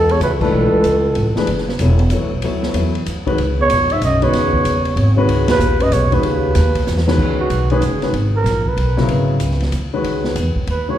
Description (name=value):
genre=modal jazz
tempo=189 BPM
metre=3/4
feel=swing 64% on 8ths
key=C# dorian from 7.2 s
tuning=A4 = 440 Hz
part: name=trumpet with bucket mute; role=melody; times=0.0-1.3, 3.6-11.0 s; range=F#4 to E5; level=-19 LUFS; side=right 2 dB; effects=none
part: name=breathy bass clarinet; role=second line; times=0.0-1.3, 3.6-7.1 s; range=C#2 to G#2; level=-22 LUFS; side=equal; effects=none
part: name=upright bass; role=bass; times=0.0-11.0 s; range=E1 to E2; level=-18 LUFS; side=equal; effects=none
part: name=open jazz drum kit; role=drums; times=0.1-10.8 s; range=crash cymbal, hi-hat, kick drum, ride cymbal, snare drum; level=-26 LUFS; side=right 1 dB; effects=none
part: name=warm concert grand piano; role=accompaniment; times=0.4-11.0 s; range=C#3 to E5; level=-20 LUFS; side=left 2 dB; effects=none
room=wet recital hall reverb, RT60 1.7 s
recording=recorded in a church or concert hall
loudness=-14 LUFS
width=side -11 dB against mid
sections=0.0-7.2 A section; 7.2-11.0 B section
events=band accent 0.4, 5.4; drum fill 6.9-7.2; muted trumpet solo 7.2-11.0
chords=0.0 Bm11; 3.4 C#m11